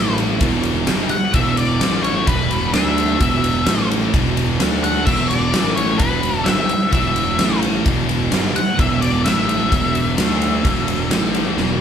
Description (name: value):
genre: quiet-loud alternative rock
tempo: 129 BPM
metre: 4/4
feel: straight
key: unclear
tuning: A4 = 440 Hz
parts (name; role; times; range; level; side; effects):
- octave-fuzz lead guitar; melody; 0.0-11.8 s; B4 to F#5; -22 LUFS; left 3 dB; distortion
- high-gain distorted guitar; riff; 0.0-11.8 s; E2 to D4; -24 LUFS; left 7 dB; distortion
- thick fuzz guitar; riff; 0.0-11.8 s; E2 to D4; -22 LUFS; right 6 dB; distortion
- fuzz fingered electric bass; bass; 0.0-11.8 s; E1 to D2; -24 LUFS; equal; overdrive
- huge arena drum kit; drums; 0.2-11.7 s; crash cymbal, kick drum, ride cymbal, snare drum; -20 LUFS; equal; none
room: moderate studio reverb, RT60 0.5 s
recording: band playing live in one room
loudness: -15 LUFS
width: side -8 dB against mid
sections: 0.0-11.8 A section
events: drum fill 11.6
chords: 0.4 E5; 1.8 A5; 2.3 E5; 2.7 D5; 3.2 E5; 3.7 A5; 4.1 E5; 4.6 D5; 5.1 E5; 5.5 A5; 6.0 E5; 7.4 A5; 7.9 E5; 9.3 A5; 9.7 E5; 10.2 D5; 10.6 E5; 11.1 A5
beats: 0.41 0.88 | 1.34 1.81 2.28 2.74 | 3.21 3.67 4.14 4.60 | 5.07 5.54 6.00 6.46 | 6.93 7.39 7.86 8.32 | 8.79 9.25 9.72 10.18 | 10.65 11.11 11.58